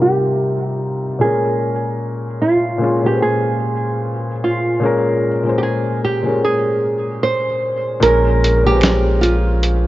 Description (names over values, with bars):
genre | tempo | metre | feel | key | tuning
lo-fi hip hop | 75 BPM | 4/4 | swing 61% on 16ths | unclear | A4 = 440 Hz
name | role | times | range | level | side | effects
nylon-string guitar | melody | 0.0-9.9 s | F4 to C5 | -18 LUFS | right 3 dB | low-pass filter, tape echo
felt-muted upright piano | accompaniment | 0.0-9.9 s | Bb2 to C5 | -18 LUFS | left 2 dB | cassette tape, low-pass filter
soft dub sub bass | bass | 8.0-9.9 s | Bb1 | -16 LUFS | equal | none
dusty soul sampler-style drum kit | drums | 8.0-9.9 s | hi-hat, snare drum | -18 LUFS | right 1 dB | none
finger snaps | percussion | 8.8-9.0 s | none | -27 LUFS | right 2 dB | none
room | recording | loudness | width
light reverb, small room ambience | worn, warbling old tape, cassette tape, warbly pitch drift, nothing above 7.7 kHz | -15 LUFS | side -15 dB against mid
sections
0.0-8.0 A section; 8.0-9.9 B section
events
filter sweep 0.0-8.0; kick muted 8.0-9.9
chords
0.0 Cm7; 1.2 Bbm7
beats
0.02 0.82 | 1.62 2.42 3.22 4.02 | 4.82 5.62 6.42 7.22 | 8.02 8.82 9.62